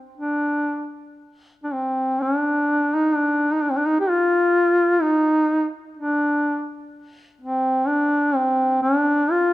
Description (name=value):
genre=caucasian folk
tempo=58-65 BPM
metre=3/4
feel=rubato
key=unclear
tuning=A4 = 440 Hz
part: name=mellow duduk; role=solo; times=0.2-9.5 s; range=C4 to G4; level=-18 LUFS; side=equal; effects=none
room=moderate recital hall reverb, RT60 1.7 s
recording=none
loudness=-18 LUFS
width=side -16 dB against mid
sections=0.0-9.5 A section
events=none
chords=none